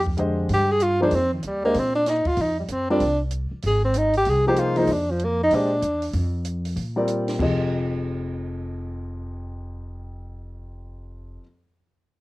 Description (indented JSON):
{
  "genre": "modal jazz",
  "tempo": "192 BPM",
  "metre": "4/4",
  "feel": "swing 63% on 8ths",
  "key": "F dorian",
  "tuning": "A4 = 440 Hz",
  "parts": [
    { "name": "upright bass", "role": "bass", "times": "0.0-11.4 s", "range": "F1 to Bb2", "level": "-27 LUFS", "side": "equal", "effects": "none" },
    { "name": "compact cocktail drum kit", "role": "drums", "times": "0.1-7.5 s", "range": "crash cymbal, hi-hat, kick drum, snare drum", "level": "-34 LUFS", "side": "right 1 dB", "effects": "cassette tape" },
    { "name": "warm concert grand piano", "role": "accompaniment", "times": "0.2-11.4 s", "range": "F2 to Eb5", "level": "-25 LUFS", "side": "left 1 dB", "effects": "cassette tape" },
    { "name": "warm tenor saxophone", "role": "melody", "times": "0.5-6.2 s", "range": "Eb3 to Ab4", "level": "-21 LUFS", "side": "equal", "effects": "none" }
  ],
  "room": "moderate studio reverb, RT60 0.6 s",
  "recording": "home recording on cassette",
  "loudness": "-20 LUFS",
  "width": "side -19 dB against mid",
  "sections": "0.0-7.4 A section; 7.4-9.9 B section",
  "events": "tenor saxophone solo 0.0-7.4",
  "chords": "0.0 Ebadd9/F; 2.4 Fm7; 4.9 Ebadd9 (rootless); 7.4 Fm9"
}